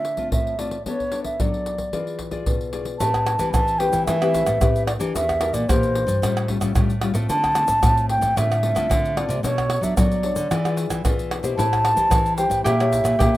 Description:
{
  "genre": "samba and choro",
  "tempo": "112 BPM",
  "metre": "4/4",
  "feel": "straight",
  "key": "A minor",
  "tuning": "A4 = 441 Hz",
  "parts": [
    { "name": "baroque flute", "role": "melody", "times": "0.0-13.4 s", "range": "C5 to A5", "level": "-22 LUFS", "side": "right 1 dB", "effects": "none" },
    { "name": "nylon-string guitar", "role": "accompaniment", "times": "0.0-13.4 s", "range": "A2 to D5", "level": "-27 LUFS", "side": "left 5 dB", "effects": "none" },
    { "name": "pandeiro, surdo, tube shaker and tamborim", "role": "percussion", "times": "0.0-13.4 s", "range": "none", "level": "-24 LUFS", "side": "equal", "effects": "none" },
    { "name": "nylon-string guitar", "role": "bass", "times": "3.0-13.4 s", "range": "E2 to F#3", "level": "-24 LUFS", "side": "equal", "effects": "none" },
    { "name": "concert harp", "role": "second line", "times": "11.6-13.4 s", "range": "E4 to G4", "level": "-27 LUFS", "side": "left 1 dB", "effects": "none" }
  ],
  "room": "small room reverb",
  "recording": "rough home demo mix",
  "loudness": "-18 LUFS",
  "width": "side -16 dB against mid",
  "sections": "0.0-3.0 A section; 3.0-13.4 B section",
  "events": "none",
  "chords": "0.0 Dm7; 0.9 Bm9; 1.9 E7b9; 3.0 Am9; 5.1 Em7b5; 6.2 A7alt; 7.3 Dm7; 9.4 Bm9; 10.5 E7b9; 11.6 Am7; 12.6 A#dim7"
}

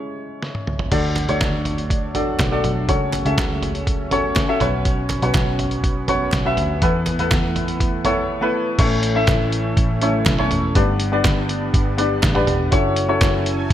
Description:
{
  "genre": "piano-driven pop",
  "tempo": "122 BPM",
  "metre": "4/4",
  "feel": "straight",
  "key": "unclear",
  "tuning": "A4 = 444 Hz",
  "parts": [
    { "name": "warm baby grand piano", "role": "accompaniment", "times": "0.0-13.7 s", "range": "G2 to E5", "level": "-21 LUFS", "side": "left 1 dB", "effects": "wide subtle chorus" },
    { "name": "lo-fi sampler-style drum kit", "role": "drums", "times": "0.4-13.7 s", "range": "crash cymbal, hi-hat, kick drum, snare drum, toms", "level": "-21 LUFS", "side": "right 1 dB", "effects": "gated reverb" },
    { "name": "lush unison pad", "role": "sustained chords", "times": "1.6-13.7 s", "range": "E3 to G#5", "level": "-30 LUFS", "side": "right 2 dB", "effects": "chorus" },
    { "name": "vintage muted picked electric bass", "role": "bass", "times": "0.9-13.7 s", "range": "E1 to E2", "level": "-23 LUFS", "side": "equal", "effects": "none" },
    { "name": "group handclap", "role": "percussion", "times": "1.2-13.3 s", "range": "none", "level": "-35 LUFS", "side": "right 8 dB", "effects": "none" }
  ],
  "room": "light reverb, digital ambience",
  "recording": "bright 1980s-style digital production",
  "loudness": "-17 LUFS",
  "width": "side -11 dB against mid",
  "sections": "0.9-8.8 A section; 8.8-13.7 B section",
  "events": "stop 0.0-0.9; drum fill 0.4-0.9",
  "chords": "0.0 C#m; 0.9 D; 2.9 F#m/C#; 4.6 Bsus2; 6.8 Esus4; 10.8 G; 12.7 F#m7"
}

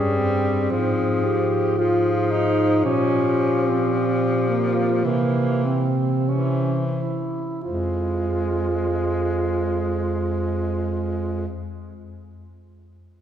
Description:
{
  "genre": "classical, lyrical piece for single-reed quartet",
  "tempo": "42-56 BPM",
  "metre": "4/4",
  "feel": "rubato",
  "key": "F minor",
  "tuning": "A4 = 440 Hz",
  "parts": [
    { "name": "mellow clarinet", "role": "melody", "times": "0.0-11.5 s", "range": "G4 to C5", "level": "-29 LUFS", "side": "left 4 dB", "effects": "none" },
    { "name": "mellow alto saxophone", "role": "second line", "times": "0.0-11.4 s", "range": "Bb3 to G4", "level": "-24 LUFS", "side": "right 4 dB", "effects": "none" },
    { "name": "clear tenor saxophone", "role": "accompaniment", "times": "0.0-11.5 s", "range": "E3 to Ab3", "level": "-26 LUFS", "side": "left 3 dB", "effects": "none" },
    { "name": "warm bass clarinet", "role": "bass", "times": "0.0-11.5 s", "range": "F2 to C3", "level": "-25 LUFS", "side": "equal", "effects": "none" }
  ],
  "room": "wet church reverb, RT60 3.2 s",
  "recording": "recorded in a church or concert hall",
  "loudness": "-20 LUFS",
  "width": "side -9 dB against mid",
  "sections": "0.0-7.7 A section; 7.7-12.9 B section",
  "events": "slowing down 0.0-7.7",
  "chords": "0.0 Fm (rootless); 0.7 Fm/Ab; 2.9 Bbm69; 5.1 C; 7.7 Fm"
}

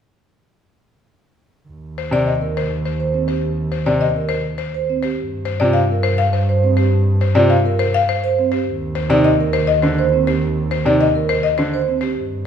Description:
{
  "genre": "classical, minimalist pattern music",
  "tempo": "103 BPM",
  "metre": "3/4",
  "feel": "straight",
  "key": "unclear",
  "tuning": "A4 = 440 Hz",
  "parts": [
    { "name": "warm double bass", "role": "bass", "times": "1.7-12.5 s", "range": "Eb2 to G2", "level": "-20 LUFS", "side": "right 1 dB", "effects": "none" },
    { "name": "buzzing marimba with medium hard mallets", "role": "melody", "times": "2.0-12.2 s", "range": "C5 to F5", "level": "-20 LUFS", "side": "left 6 dB", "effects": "none" },
    { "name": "bright baby grand piano", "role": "accompaniment", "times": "2.1-11.8 s", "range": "C3 to D3", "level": "-21 LUFS", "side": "equal", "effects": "none" },
    { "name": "vibraphone with soft mallets", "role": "arpeggios", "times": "2.4-12.2 s", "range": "C4 to C5", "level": "-21 LUFS", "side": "right 6 dB", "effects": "none" }
  ],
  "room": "wet recital hall reverb, RT60 1.4 s",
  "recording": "minimal, uncompressed stereo recording",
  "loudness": "-15 LUFS",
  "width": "side -8 dB against mid",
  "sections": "1.7-12.5 A section",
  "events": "none",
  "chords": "1.7 N.C.; 5.2 G7(no3); 8.7 N.C."
}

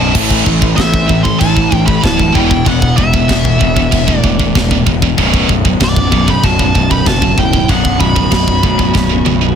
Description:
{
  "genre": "heavy metal",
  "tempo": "96 BPM",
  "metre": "4/4",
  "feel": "straight",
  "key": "unclear",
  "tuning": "A4 = 436 Hz",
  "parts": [
    { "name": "nasal lead guitar with a parked wah", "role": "melody", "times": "0.0-9.6 s", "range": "D5 to C6", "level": "-18 LUFS", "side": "equal", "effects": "overdrive, tape echo" },
    { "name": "crunchy overdriven guitar", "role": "riff", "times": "0.0-9.6 s", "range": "B1 to A3", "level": "-19 LUFS", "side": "left 1 dB", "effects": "none" },
    { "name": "heavy high-gain guitar", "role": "riff", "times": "0.0-9.6 s", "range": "B1 to A3", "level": "-18 LUFS", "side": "right 13 dB", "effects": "distortion" },
    { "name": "tight distorted guitar", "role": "riff", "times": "0.0-9.6 s", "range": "B1 to A3", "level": "-17 LUFS", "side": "left 10 dB", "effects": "distortion" },
    { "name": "fuzz picked electric bass", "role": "bass", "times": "0.0-9.5 s", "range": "B0 to A1", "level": "-16 LUFS", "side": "equal", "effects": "overdrive" },
    { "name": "tight metal drum kit", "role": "drums", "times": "0.1-9.4 s", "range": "china cymbal, crash cymbal, kick drum, snare drum, toms", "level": "-15 LUFS", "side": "equal", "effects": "none" },
    { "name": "high-gain lead guitar", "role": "second line", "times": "0.8-9.6 s", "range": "B3 to A4", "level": "-22 LUFS", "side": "right 7 dB", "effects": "distortion" }
  ],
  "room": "little or no reverb",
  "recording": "dense, heavily limited modern master",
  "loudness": "-9 LUFS",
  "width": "side -8 dB against mid",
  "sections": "0.1-9.6 A section",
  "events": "drum fill 8.9-9.6",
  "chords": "0.1 A5; 2.3 E5; 5.2 B5"
}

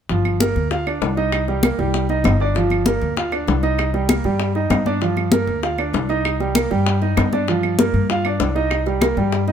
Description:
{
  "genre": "Afro-Cuban jazz",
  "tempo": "195 BPM",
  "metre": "4/4",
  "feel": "straight",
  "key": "G minor",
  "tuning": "A4 = 440 Hz",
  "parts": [
    { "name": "clear concert grand piano", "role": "accompaniment", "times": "0.1-9.5 s", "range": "F3 to F5", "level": "-21 LUFS", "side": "right 5 dB", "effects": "none" },
    { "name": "upright bass", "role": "bass", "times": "0.1-9.5 s", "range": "G1 to G2", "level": "-21 LUFS", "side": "left 2 dB", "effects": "none" },
    { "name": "bongos", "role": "percussion", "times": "0.1-9.5 s", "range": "none", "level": "-25 LUFS", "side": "left 7 dB", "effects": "none" },
    { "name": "congas", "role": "percussion", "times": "0.1-9.5 s", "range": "none", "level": "-22 LUFS", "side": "left 2 dB", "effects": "none" },
    { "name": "claves", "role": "percussion", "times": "0.3-9.2 s", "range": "none", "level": "-30 LUFS", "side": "right 7 dB", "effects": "none" }
  ],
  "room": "light reverb",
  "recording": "minimal, uncompressed stereo recording",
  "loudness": "-17 LUFS",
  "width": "side -8 dB against mid",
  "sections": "0.1-9.5 A section",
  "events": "none",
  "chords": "0.1 Gm7; 1.3 Cm7; 2.6 Gm7; 3.8 Cm7; 5.0 Gm7; 6.2 Cm7; 7.5 Gm7; 8.7 Cm7"
}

